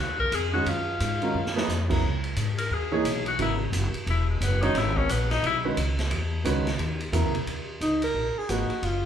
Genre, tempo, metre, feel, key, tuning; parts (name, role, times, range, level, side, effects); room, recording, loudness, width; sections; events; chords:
modal jazz; 176 BPM; 4/4; swing 63% on 8ths; A4 = 440 Hz
bright tenor saxophone; second line; 0.0-5.6 s; Ab3 to Bb4; -28 LUFS; left 3 dB
upright bass; bass; 0.0-9.1 s; Fb1 to Ab2; -28 LUFS; equal
swinging big-band drum kit; drums; 0.2-8.9 s; crash cymbal, hi-hat, kick drum, ride cymbal, snare drum; -32 LUFS; equal
warm concert grand piano; accompaniment; 0.5-8.7 s; Db3 to Db5; -29 LUFS; right 3 dB
breathy alto saxophone; melody; 7.8-9.1 s; Eb4 to Bb4; -26 LUFS; right 1 dB
moderate large studio reverb, RT60 1.1 s; band playing live in one room; -24 LUFS; side -9 dB against mid
0.0-7.5 A section; 7.5-9.1 B section
tenor saxophone solo 0.0-7.5; drum fill 1.3-1.7
0.0 Ebm9; 2.0 Dbm9; 7.5 Ebm9